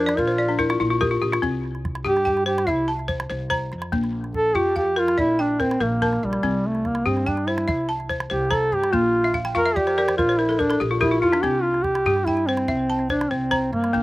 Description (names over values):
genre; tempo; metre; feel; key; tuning
west african traditional, West African string and xylophone music; 96 BPM (dotted quarters); 12/8; straight; C mixolydian; A4 = 440 Hz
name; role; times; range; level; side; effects
mellow duduk; melody; 0.0-14.0 s; G3 to Bb4; -21 LUFS; right 1 dB; slapback echo
balafon; arpeggios; 0.0-14.0 s; Bb3 to Bb5; -24 LUFS; left 2 dB; slapback echo
upright bass; bass; 0.0-14.0 s; Bb1 to G2; -29 LUFS; equal; none
calabash; percussion; 0.1-14.0 s; none; -31 LUFS; right 1 dB; none
room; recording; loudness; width
little or no reverb; recorded outdoors, with no room sound; -19 LUFS; side -18 dB against mid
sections
0.0-14.0 A section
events
balafon fill 0.0-1.4, 9.2-11.4; duduk solo 0.0-14.0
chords
0.0 Bb; 1.4 C; 3.9 Bb; 6.4 C; 8.9 Bb5; 11.4 C